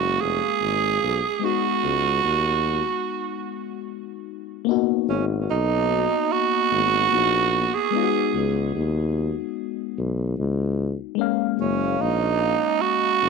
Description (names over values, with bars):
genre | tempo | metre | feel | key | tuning
lovers rock reggae | 74 BPM | 4/4 | straight | unclear | A4 = 439 Hz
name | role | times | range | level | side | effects
growling tenor saxophone | melody | 0.0-13.3 s | C#4 to G#4 | -22 LUFS | right 11 dB | tape echo
mellow FM electric piano | accompaniment | 0.0-13.3 s | G#3 to E#5 | -27 LUFS | left 18 dB | chorus
warm tuba | bass | 0.0-13.3 s | E#1 to D#2 | -25 LUFS | left 1 dB | none
room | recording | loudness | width
moderate spring reverb, RT60 1.8 s | 1960s-style stereo with parts hard left and right | -20 LUFS | side -4 dB against mid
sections
0.0-4.7 A section; 4.7-13.3 B section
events
break 3.0-4.7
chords
0.0 F#maj7; 1.4 C#7sus4 (rootless); 4.7 G#m7; 7.9 C#7sus4; 11.2 F#maj7